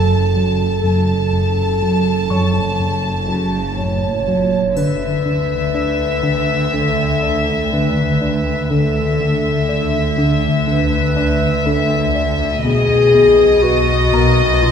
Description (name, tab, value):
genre	cinematic, suspense film score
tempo	61 BPM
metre	4/4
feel	straight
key	unclear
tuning	A4 = 439 Hz
part	clear studio violin section	melody	0.0-14.7 s	D#5 to A5	-21 LUFS	left 2 dB	none
part	dark clarinet	second line	0.0-14.7 s	F4 to Db5	-18 LUFS	left 2 dB	none
part	fat analog bass	riff	0.0-14.7 s	Gb2 to D4	-20 LUFS	equal	none
part	warm symphonic cello section	bass	0.0-14.7 s	F2 to D3	-24 LUFS	right 3 dB	none
part	warm symphonic double bass section	bass	0.0-14.7 s	Gb1 to D2	-24 LUFS	right 1 dB	none
part	swarming drone	drone	0.0-14.7 s	Gb1 to D2	-24 LUFS	equal	built-in reverb
part	clear baby grand piano	texture	2.3-14.7 s	Bb4 to Db6	-28 LUFS	left 1 dB	none
part	triangle	percussion	4.8-6.7 s	none	-39 LUFS	left 3 dB	none
part	warm studio violin section	texture	12.7-14.7 s	D#6 to A6	-26 LUFS	left 4 dB	none
room	wet scoring stage reverb, RT60 1.8 s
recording	heard from further back in the room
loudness	-14 LUFS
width	side -7 dB against mid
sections	0.0-14.7 A section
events	none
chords	0.0 Gbm; 4.8 Dsus2; 12.6 B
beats	| 0.84 1.83 2.81 3.79 | 4.78 5.76 6.75 7.73 | 8.71 9.70 10.68 11.66 | 12.65 13.63 14.61